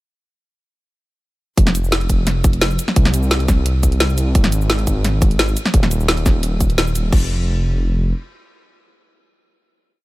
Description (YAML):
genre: liquid drum and bass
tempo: 173 BPM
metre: 4/4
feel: straight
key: F minor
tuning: A4 = 440 Hz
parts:
  - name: dark detuned saw bass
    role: bass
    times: 1.6-8.1 s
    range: Eb1 to C2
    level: -18 LUFS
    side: equal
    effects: tube saturation
  - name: drum and bass drum kit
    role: drums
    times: 1.6-7.2 s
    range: crash cymbal, hi-hat, shaker, snare drum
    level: -20 LUFS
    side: equal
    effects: none
  - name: electronic kick drum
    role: drums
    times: 1.6-7.2 s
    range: none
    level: -14 LUFS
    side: equal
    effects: none
room: little or no reverb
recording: none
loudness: -14 LUFS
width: side -19 dB against mid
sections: 1.6-7.1 drop; 7.1-9.9 final note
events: drop 1.6-7.1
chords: none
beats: | 1.58 1.92 2.27 2.62 | 2.96 3.31 3.66 4.00 | 4.35 4.70 5.04 5.39 | 5.74 6.09 6.43 6.78 | 7.13 7.47 7.82